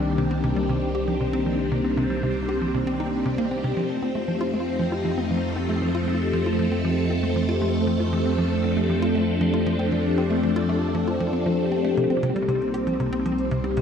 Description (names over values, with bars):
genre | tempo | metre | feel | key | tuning
ambient, sequencer-driven space music | 117 BPM | 4/4 | straight | C dorian | A4 = 439 Hz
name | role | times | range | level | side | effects
phased string machine | sustained chords | 0.0-13.8 s | Eb3 to C5 | -24 LUFS | equal | ensemble chorus, phaser
vibraphone with soft mallets | arpeggios | 0.0-13.8 s | A3 to C5 | -28 LUFS | left 3 dB | auto-pan, tape echo
tight sequencer bass | riff | 0.0-13.8 s | C3 to G4 | -28 LUFS | right 1 dB | analog chorus, tape echo
warm sub bass | bass | 0.0-13.8 s | C2 to F2 | -30 LUFS | equal | none
electronic hi-hat and bongos | percussion | 12.0-13.8 s | none | -52 LUFS | left 3 dB | tape echo
room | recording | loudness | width
wet echo chamber reverb, RT60 2.2 s | echo-heavy mix | -21 LUFS | side -7 dB against mid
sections
0.0-12.0 A section; 12.0-13.8 A section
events
none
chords
0.0 Cmadd9; 3.8 F7; 12.0 Cm